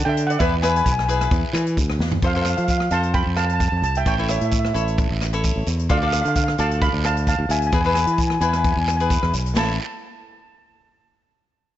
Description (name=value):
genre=calypso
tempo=131 BPM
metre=4/4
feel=swing 54% on 16ths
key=unclear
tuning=A4 = 443 Hz
part: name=steel pan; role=melody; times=0.0-9.8 s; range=B4 to B5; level=-24 LUFS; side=right 2 dB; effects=diffuse ambient delay
part: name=cavaquinho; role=accompaniment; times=0.0-9.8 s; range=E4 to D5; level=-26 LUFS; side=left 4 dB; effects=none
part: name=modern bright fingered electric bass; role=bass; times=0.0-9.8 s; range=A1 to F3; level=-22 LUFS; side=equal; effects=none
part: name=open jazz drum kit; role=drums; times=0.2-9.7 s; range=hi-hat, kick drum, ride cymbal, rim click, snare drum, toms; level=-24 LUFS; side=equal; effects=none
part: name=guiro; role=percussion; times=0.4-9.8 s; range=none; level=-34 LUFS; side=right 6 dB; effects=none
room=light reverb, studio ambience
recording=nothing above 7.9 kHz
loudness=-18 LUFS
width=side -12 dB against mid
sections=0.0-2.2 A section; 2.2-9.6 B section; 9.6-11.4 C section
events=drum fill 2.0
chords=0.4 E; 2.2 F; 4.1 A; 5.9 Dm; 7.7 E; 9.6 A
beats=| 0.40 0.86 1.32 1.77 | 2.23 2.69 3.15 3.61 | 4.07 4.52 4.98 5.44 | 5.90 6.36 6.82 7.27 | 7.73 8.19 8.65 9.10 | 9.56